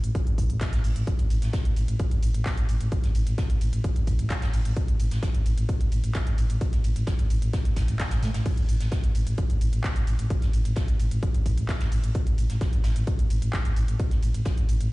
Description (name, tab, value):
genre	driving peak-time techno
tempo	130 BPM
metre	4/4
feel	straight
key	unclear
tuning	A4 = 437 Hz
part	growling FM bass	bass	0.0-14.9 s	A1 to A2	-25 LUFS	equal	sidechain pumping
part	techno drum kit	drums	0.0-14.9 s	crash cymbal, handclaps, hi-hat, ride cymbal	-39 LUFS	equal	sidechain pumping on hats, sidechain pumping on cymbals
part	electronic kick drum	drums	0.1-14.6 s	none	-25 LUFS	equal	none
part	soft brush drum kit	drums	0.2-14.8 s	hi-hat, snare drum	-44 LUFS	right 1 dB	sidechain pumping on hats, high-pass filter on hats, high-pass filter on snare, high-pass filter on room
room	studio reverb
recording	played on a big sound system in a bare room, large studio reverb, nothing above 10.9 kHz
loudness	-23 LUFS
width	side -20 dB against mid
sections	0.0-14.9 A section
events	none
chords	none